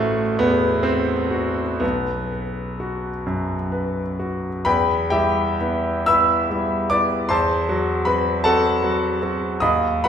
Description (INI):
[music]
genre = classical, romantic character piece for solo piano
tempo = 39-53 BPM (dotted quarters)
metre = 6/8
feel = rubato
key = E minor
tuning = A4 = 440 Hz
[part]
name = clear concert grand piano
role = solo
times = 0.0-10.1 s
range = A1 to E6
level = -18 LUFS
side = equal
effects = none
[sound]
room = wet recital hall reverb, RT60 1.5 s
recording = recorded in a church or concert hall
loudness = -18 LUFS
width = side -8 dB against mid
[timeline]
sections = 0.0-4.7 A section; 4.7-10.1 B section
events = none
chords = 0.0 F#m7b5/A; 1.8 B5; 4.7 Em; 7.3 F#m7b5/E